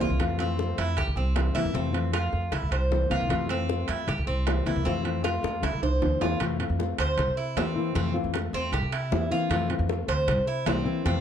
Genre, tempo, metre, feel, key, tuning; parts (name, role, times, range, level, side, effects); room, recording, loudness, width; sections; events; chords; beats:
latin, Cuban son and guajira; 155 BPM; 4/4; straight; F major; A4 = 440 Hz
nylon-string guitar; accompaniment; 0.0-11.2 s; C3 to F4; -30 LUFS; left 4 dB
Cuban tres; arpeggios; 0.0-11.2 s; C4 to C5; -30 LUFS; right 2 dB
upright bass; bass; 0.0-11.2 s; C2 to C3; -28 LUFS; equal
bongos; percussion; 0.0-11.2 s; -36 LUFS; left 8 dB
timbales; percussion; 0.0-11.2 s; -34 LUFS; right 9 dB
light reverb; dark, warm production; -24 LUFS; side -9 dB against mid
0.0-6.4 A section; 6.4-11.2 B section
drum fill 0.0, 5.4-6.4
0.2 Fmaj7; 1.0 C7; 1.8 Fmaj7; 2.5 C7; 3.3 Fmaj7; 4.1 C7; 4.9 Fmaj7; 5.6 C7; 6.4 Fmaj7; 7.2 C7; 8.0 Fmaj7; 8.7 C7; 9.5 Fmaj7; 10.3 C7
| 0.20 0.59 0.97 1.36 | 1.75 2.14 2.53 2.91 | 3.30 3.69 4.08 4.47 | 4.85 5.24 5.63 6.02 | 6.41 6.79 7.18 7.57 | 7.96 8.35 8.73 9.12 | 9.51 9.90 10.28 10.67 | 11.06